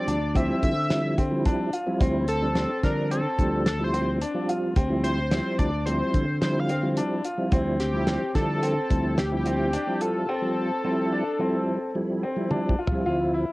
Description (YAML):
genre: progressive instrumental, band music in an uneven meter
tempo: 109 BPM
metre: 5/4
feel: straight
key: D minor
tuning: A4 = 441 Hz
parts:
  - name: octave-doubled lead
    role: melody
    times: 0.0-12.5 s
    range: G4 to F5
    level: -29 LUFS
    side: equal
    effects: chorus, cassette tape
  - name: tonewheel organ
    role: accompaniment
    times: 0.0-13.5 s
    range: D2 to F4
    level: -28 LUFS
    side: right 1 dB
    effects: chorus vibrato, slow rotary speaker, cassette tape
  - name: clear baby grand piano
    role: arpeggios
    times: 0.0-13.5 s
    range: C4 to F4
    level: -30 LUFS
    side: left 2 dB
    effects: cassette tape
  - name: modern bright fingered electric bass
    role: bass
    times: 0.1-9.8 s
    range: D2 to D3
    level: -28 LUFS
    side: equal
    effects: none
  - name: damped 70s drum kit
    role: drums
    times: 0.1-13.0 s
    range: hi-hat, kick drum, snare drum, toms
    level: -26 LUFS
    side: equal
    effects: cassette tape
room: moderate spring reverb, RT60 1.2 s, small room ambience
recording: home recording on cassette, lossy compression artefacts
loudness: -22 LUFS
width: side -20 dB against mid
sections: 0.0-13.1 A section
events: drum fill 12.5-13.1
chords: 0.0 Dm11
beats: 0.35 0.90 1.45 | 2.01 2.56 3.11 3.66 4.21 | 4.76 5.32 5.87 6.42 6.97 | 7.52 8.08 8.63 9.18 9.74 | 10.29 10.84 11.40 11.95 12.51 | 13.06